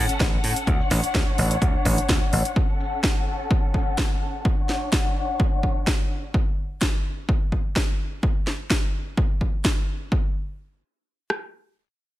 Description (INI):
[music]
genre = filtered disco house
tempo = 127 BPM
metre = 4/4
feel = swing 54% on 16ths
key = unclear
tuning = A4 = 439 Hz
[part]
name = warm studio string section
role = sustained chords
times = 0.0-6.3 s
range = C#4 to F#5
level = -28 LUFS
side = left 2 dB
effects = sidechain pumping, low-pass filter
[part]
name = dry thumbed slap bass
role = bass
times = 0.0-2.4 s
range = A1 to A2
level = -24 LUFS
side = equal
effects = sidechain pumping, low-pass filter
[part]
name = house drum kit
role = drums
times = 0.1-9.7 s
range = hi-hat, snare drum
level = -27 LUFS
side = equal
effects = sidechain pumping on hats
[part]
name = maracas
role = percussion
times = 0.1-6.3 s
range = none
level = -48 LUFS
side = right 3 dB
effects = none
[part]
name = punchy analog drum machine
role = drums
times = 0.2-11.4 s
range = kick drum, rim click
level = -23 LUFS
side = equal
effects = overdrive
[sound]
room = light reverb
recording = none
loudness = -21 LUFS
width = side -15 dB against mid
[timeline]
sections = 0.0-10.1 A section; 10.1-12.2 B section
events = filter sweep on slap bass 0.0-2.6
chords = 0.0 A6; 0.7 Dmaj7; 2.6 A6; 4.5 Dmaj7; 6.3 N.C.